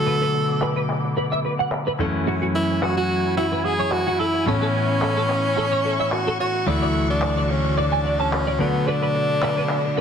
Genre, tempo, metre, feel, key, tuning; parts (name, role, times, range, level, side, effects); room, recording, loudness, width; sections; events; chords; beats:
nu-disco, nu disco; 109 BPM; 4/4; swing 53% on 16ths; A4 = 437 Hz
breathy tenor saxophone; melody; 0.0-10.0 s; B3 to A4; -23 LUFS; equal; digital delay
clear concert grand piano; accompaniment; 0.0-10.0 s; D2 to C#4; -23 LUFS; left 2 dB
clear symphonic string section; sustained chords; 0.0-10.0 s; B2 to D6; -30 LUFS; right 1 dB; low-pass filter
clean electric guitar; riff; 0.1-10.0 s; F#4 to A5; -27 LUFS; right 2 dB; ensemble chorus, low-pass filter, digital delay
damped 70s drum kit; drums; 0.1-10.0 s; handclaps, hi-hat; -31 LUFS; right 1 dB; low-pass filter on hats, low-pass filter on toms, low-pass filter on cymbals, low-pass filter on snare, low-pass filter on perc, low-pass filter on room
light reverb, studio ambience; dense, heavily limited modern master; -19 LUFS; side -7 dB against mid
0.0-10.0 A section
filter sweep on string section 0.0-10.0
0.0 Bm7; 2.0 F#m9; 4.5 Amaj7; 6.7 Dmaj7; 8.6 Bm7
| 0.07 0.62 1.17 1.72 | 2.27 2.82 3.37 3.92 | 4.47 5.02 5.57 6.12 | 6.67 7.22 7.77 8.32 | 8.87 9.43 9.97